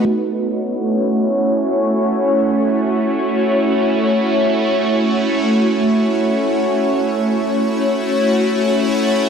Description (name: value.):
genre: hip hop.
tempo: free time.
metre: none.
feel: none.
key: F# minor.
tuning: A4 = 439 Hz.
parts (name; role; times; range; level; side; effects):
shimmering ambient pad; solo; 0.1-9.3 s; A3 to C#5; -14 LUFS; equal; chorus, built-in reverb, low-pass filter.
room: light reverb.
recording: dry, gritty hardware recording.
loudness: -14 LUFS.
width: side -6 dB against mid.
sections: 0.1-6.8 A section; 6.8-9.3 B section.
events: filter sweep on ambient pad 0.1-6.8.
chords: 0.1 F#m7.